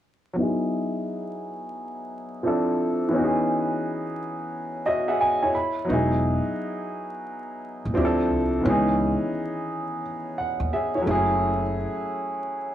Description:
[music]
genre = hip hop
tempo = 87 BPM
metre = 4/4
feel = swing 64% on 16ths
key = E major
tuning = A4 = 437 Hz
[part]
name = warm upright piano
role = accompaniment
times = 0.3-12.7 s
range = D#3 to B5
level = -24 LUFS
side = equal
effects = low-pass filter
[part]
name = upright bass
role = bass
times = 5.9-11.8 s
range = E1 to D#2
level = -26 LUFS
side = equal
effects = none
[sound]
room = light reverb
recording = dry, gritty hardware recording, vinyl crackle, small room ambience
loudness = -23 LUFS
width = side -11 dB against mid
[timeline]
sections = 0.4-5.9 A section; 5.9-12.7 B section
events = filter sweep on upright piano 0.4-5.9; upright piano fill 4.5-5.9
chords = 0.4 Emaj9; 2.4 Dm7; 3.1 C#m7; 5.5 N.C.; 5.9 Emaj9; 8.0 Dm7; 8.6 C#m7; 11.1 F#m9

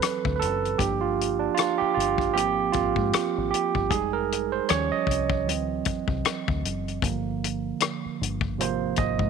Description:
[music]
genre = R&B, neo-soul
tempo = 77 BPM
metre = 4/4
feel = swing 59% on 16ths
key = unclear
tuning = A4 = 441 Hz
[part]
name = barky tine electric piano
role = accompaniment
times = 0.0-9.3 s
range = C3 to Eb5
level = -25 LUFS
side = right 9 dB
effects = none
[part]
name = warm soul drum kit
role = drums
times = 0.0-9.3 s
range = hi-hat, kick drum, rim click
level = -28 LUFS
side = left 7 dB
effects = none
[part]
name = deep dub fingered electric bass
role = bass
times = 0.3-9.3 s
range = F1 to Ab2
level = -31 LUFS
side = left 2 dB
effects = none
[sound]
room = light reverb, studio reverb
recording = 1960s-style stereo with parts hard left and right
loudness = -23 LUFS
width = side -6 dB against mid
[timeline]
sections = 0.0-9.3 A section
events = tine electric piano solo 0.0-9.3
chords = 0.0 D7; 0.8 Gm7; 2.4 Ab6; 3.9 Fm9; 4.7 Eb9; 5.5 D7; 7.0 Gm7; 8.6 Ab6

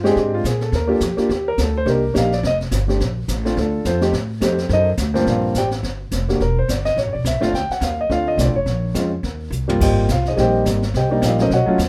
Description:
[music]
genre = jazz piano trio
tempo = 212 BPM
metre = 4/4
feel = swing 59% on 8ths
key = Bb major, G minor from 5.3 s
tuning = A4 = 440 Hz
[part]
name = dark grand piano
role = melody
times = 0.0-11.8 s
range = G2 to G5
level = -21 LUFS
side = equal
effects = none
[part]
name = upright bass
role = bass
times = 0.0-11.9 s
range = E1 to Bb2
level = -24 LUFS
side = equal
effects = none
[part]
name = jazz brush drum kit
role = drums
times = 0.1-11.9 s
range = brushed snare drum, crash cymbal, hi-hat, kick drum, snare drum, toms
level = -28 LUFS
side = equal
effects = none
[sound]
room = little or no reverb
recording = none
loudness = -19 LUFS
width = mono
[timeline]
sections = 0.0-5.3 A section; 5.3-11.9 A section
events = grand piano solo 0.0-11.9; drum fill 9.5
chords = 0.0 Bb13; 0.7 Ebmaj7; 1.9 Cm9; 2.4 Fsus2; 3.0 Bbmaj9; 4.1 Am7b5; 4.7 D7b9; 5.3 Gm11; 6.4 Em7b5; 7.0 A7; 7.5 Dm7; 8.7 Bbm7; 9.2 Eb6; 9.8 Abmaj7; 10.9 Cm7

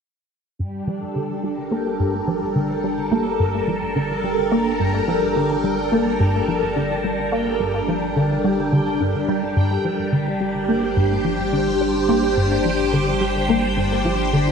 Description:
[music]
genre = ambient, sequencer-driven space music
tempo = 107 BPM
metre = 4/4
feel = straight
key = G minor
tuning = A4 = 439 Hz
[part]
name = phased string machine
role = sustained chords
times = 0.6-14.5 s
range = G3 to C5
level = -21 LUFS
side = equal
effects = ensemble chorus, phaser
[part]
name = plucky analog bass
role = riff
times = 0.6-14.5 s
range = G2 to Bb3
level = -22 LUFS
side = equal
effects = ensemble chorus, ping-pong delay
[part]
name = warm sub bass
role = bass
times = 0.6-14.5 s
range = G1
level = -33 LUFS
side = equal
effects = none
[part]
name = bubbling stepped-filter texture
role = texture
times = 0.7-14.5 s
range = G5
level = -32 LUFS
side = right 1 dB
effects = chorus, built-in reverb
[sound]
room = wet plate reverb, RT60 3.2 s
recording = dreamy mix soaked in reverb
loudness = -18 LUFS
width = side -6 dB against mid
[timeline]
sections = 0.6-14.5 A section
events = fade-in on sub bass 0.6-14.5; filter sweep on analog synth bass 0.6-14.5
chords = 0.6 Gm

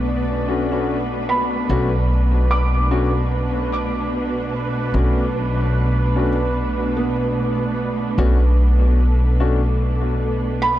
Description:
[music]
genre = ambient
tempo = 74 BPM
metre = 4/4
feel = swing 58% on 16ths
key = B minor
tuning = A4 = 439 Hz
[part]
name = muted studio string section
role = sustained chords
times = 0.0-10.8 s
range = B2 to B4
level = -24 LUFS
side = right 2 dB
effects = none
[part]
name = felt-muted upright piano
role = arpeggios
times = 0.0-10.8 s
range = B3 to D6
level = -26 LUFS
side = right 2 dB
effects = low-pass filter, tape echo
[part]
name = upright bass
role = bass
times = 0.0-10.8 s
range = B1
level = -19 LUFS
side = equal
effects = none
[part]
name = bubbling stepped-filter texture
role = texture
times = 0.0-10.8 s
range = B3 to D5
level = -28 LUFS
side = equal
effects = chorus, built-in reverb
[part]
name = warm upright piano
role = stabs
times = 0.5-9.6 s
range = A3 to F#4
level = -26 LUFS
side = left 4 dB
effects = dub echo
[sound]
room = light reverb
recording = nothing above 10.4 kHz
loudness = -17 LUFS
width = side -13 dB against mid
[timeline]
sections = 0.0-10.8 A section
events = none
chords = 0.0 Bm7

